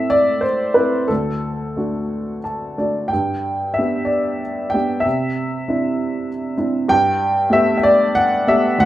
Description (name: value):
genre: classical, lyrical solo piano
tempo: 59-66 BPM (dotted quarters)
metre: 6/8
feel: rubato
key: G major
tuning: A4 = 440 Hz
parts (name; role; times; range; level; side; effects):
- dark upright piano; solo; 0.0-8.9 s; D2 to A5; -16 LUFS; equal; none
room: moderate recital hall reverb, RT60 1.4 s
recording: minimal, uncompressed stereo recording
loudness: -16 LUFS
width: side -14 dB against mid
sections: 0.0-8.9 A section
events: upright piano fill 2.1-3.1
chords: 0.0 Am; 1.1 D; 3.1 G; 5.1 Cadd9; 6.9 Gadd9